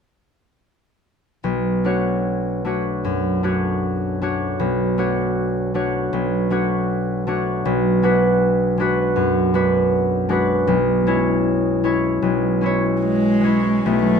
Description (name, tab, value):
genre	classical, impressionist duo for cello and harp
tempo	77 BPM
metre	4/4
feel	uneven beats, rubato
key	B dorian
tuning	A4 = 438 Hz
part	concert harp	accompaniment	1.4-14.2 s	B1 to C#5	-17 LUFS	equal	none
part	rich cello	melody	13.0-14.2 s	G#3 to A3	-17 LUFS	equal	none
room	light reverb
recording	close, detailed microphones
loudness	-17 LUFS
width	side -6 dB against mid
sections	1.4-13.9 A section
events	none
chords	1.4 Bm9; 7.7 Bm6; 10.7 C#m7/B